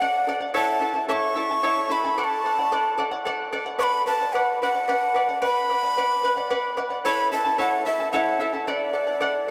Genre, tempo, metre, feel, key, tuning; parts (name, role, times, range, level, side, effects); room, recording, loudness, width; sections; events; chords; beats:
andean folk, Andean ensemble; 74 BPM (dotted quarters); 6/8; straight; A4 = 437 Hz
breathy bright large quena; melody; 0.0-9.5 s; D5 to D6; -25 LUFS; equal
charango; accompaniment; 0.0-9.5 s; E4 to A5; -28 LUFS; equal
wet cathedral reverb, RT60 6.3 s; in a vast, echoing space; -24 LUFS; mono
0.0-7.1 A section; 7.1-9.5 A section
0.0 D; 0.5 A; 2.2 D; 3.8 Bm; 7.1 A; 8.7 D
| 0.55 1.36 | 2.17 2.99 | 3.80 4.61 | 5.43 6.24 | 7.05 7.87 | 8.68 9.49